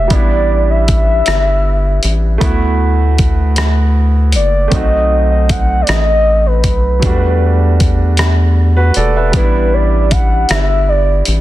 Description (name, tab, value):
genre	slow six-eight R&B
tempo	52 BPM (dotted quarters)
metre	6/8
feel	straight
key	unclear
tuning	A4 = 440 Hz
part	gliding portamento lead	melody	0.0-11.2 s	B4 to F#5	-16 LUFS	equal	chorus, slapback echo
part	clear grand piano	accompaniment	0.0-11.4 s	F#3 to E5	-19 LUFS	right 4 dB	none
part	rubbery square bass	bass	0.0-11.4 s	E1 to E2	-13 LUFS	equal	none
part	dusty soul sampler-style drum kit	drums	0.1-11.4 s	hi-hat, kick drum, rim click	-15 LUFS	equal	soft clipping on snare
room	digital ambience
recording	dense, heavily limited modern master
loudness	-10 LUFS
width	side -15 dB against mid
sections	0.0-11.4 A section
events	soft synth lead solo 0.0-11.4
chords	0.1 A9sus4; 2.4 D69; 4.7 B7b9; 7.0 Em11; 9.3 A9sus4